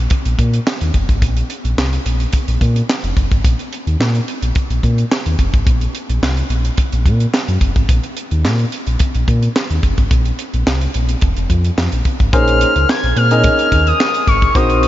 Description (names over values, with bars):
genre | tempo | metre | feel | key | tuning
early-eighties boogie funk | 108 BPM | 4/4 | straight | Bb minor | A4 = 441 Hz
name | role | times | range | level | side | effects
sub bass with octave | bass | 0.0-14.9 s | F1 to Bb2 | -16 LUFS | equal | none
tight funk drum kit | drums | 0.1-14.9 s | handclaps, hi-hat, kick drum, snare drum | -17 LUFS | equal | none
expressive portamento lead | melody | 12.3-14.9 s | Db6 to Ab6 | -15 LUFS | left 2 dB | chorus
warm baby grand piano | accompaniment | 12.3-14.9 s | Bb3 to Eb5 | -17 LUFS | equal | none
room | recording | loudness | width
light reverb | nothing above 7.5 kHz | -13 LUFS | side -14 dB against mid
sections
0.0-12.3 A section; 12.3-14.9 B section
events
none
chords
0.0 Bb7sus4; 1.2 Fsus4 (rootless); 3.4 Bbsus4; 5.7 Gb; 7.9 Bbsus4; 10.1 Bbsus2; 11.2 Fm; 12.3 Bbm11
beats
0.11 0.66 | 1.22 1.77 2.33 2.89 | 3.44 4.00 4.55 5.11 | 5.66 6.22 6.78 7.33 | 7.89 8.44 9.00 9.55 | 10.11 10.66 11.22 11.78 | 12.33 12.89 13.44 14.00 | 14.55